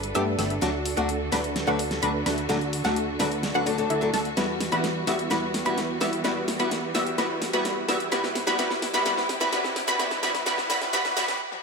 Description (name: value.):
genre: EDM, festival progressive house.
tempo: 128 BPM.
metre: 4/4.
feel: straight.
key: unclear.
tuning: A4 = 439 Hz.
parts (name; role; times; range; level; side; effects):
rich studio string section; sustained chords; 0.0-11.4 s; C3 to B4; -33 LUFS; right 1 dB; none.
fat analog bass; bass; 0.0-11.4 s; G1 to G2; -36 LUFS; right 1 dB; none.
big-room dance drum kit; drums; 0.0-11.6 s; hi-hat, snare drum, toms; -31 LUFS; equal; none.
picked old ladder-braced acoustic guitar; accompaniment; 0.1-11.2 s; F#3 to B4; -30 LUFS; left 4 dB; ping-pong delay.
wide unison pluck; arpeggios; 0.2-11.4 s; E5 to E6; -29 LUFS; right 1 dB; ping-pong delay.
supersaw stab; riff; 0.2-11.4 s; G3 to E5; -29 LUFS; right 1 dB; low-pass filter, ping-pong delay.
riser; sound effects; 7.5-11.4 s; none; -40 LUFS; right 1 dB; none.
room: moderate lush hall reverb, RT60 2.1 s.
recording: high-pass filter.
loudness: -23 LUFS.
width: side -4 dB against mid.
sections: 0.0-11.6 A section.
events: build-up 0.0-11.6; drum fill 0.0-11.4; filter sweep on supersaw synth 0.0-11.6; filter sweep 0.0-11.6; stop 11.4.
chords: 0.0 Gadd9; 0.6 D; 4.4 Emadd9; 8.1 C.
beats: 0.15 | 0.62 1.09 1.56 2.03 | 2.50 2.96 3.43 3.90 | 4.37 4.84 5.31 5.78 | 6.25 6.71 7.18 7.65 | 8.12 8.59 9.06 9.53 | 10.00 10.46 10.93 11.40.